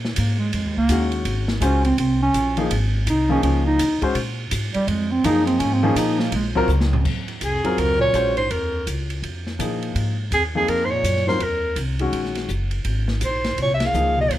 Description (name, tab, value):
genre	modal jazz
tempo	166 BPM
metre	4/4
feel	swing 63% on 8ths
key	Eb dorian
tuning	A4 = 440 Hz
part	upright bass	bass	0.0-14.4 s	Gb1 to Bb2	-23 LUFS	equal	none
part	open jazz drum kit	drums	0.0-14.4 s	crash cymbal, hi-hat, kick drum, ride cymbal, snare drum, toms	-29 LUFS	right 2 dB	none
part	breathy bass clarinet	second line	0.2-14.3 s	F2 to Eb4	-23 LUFS	right 2 dB	none
part	warm baby grand piano	accompaniment	0.9-14.4 s	Eb3 to C5	-24 LUFS	left 3 dB	none
part	breathy soprano saxophone	melody	7.4-14.3 s	Ab4 to F5	-21 LUFS	equal	none
room	light reverb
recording	close, detailed microphones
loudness	-18 LUFS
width	side -13 dB against mid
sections	0.0-7.1 A section; 7.1-14.4 B section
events	bass clarinet solo 0.0-7.1; drum fill 6.7-7.1; band accent 13.8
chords	0.0 Eb9sus4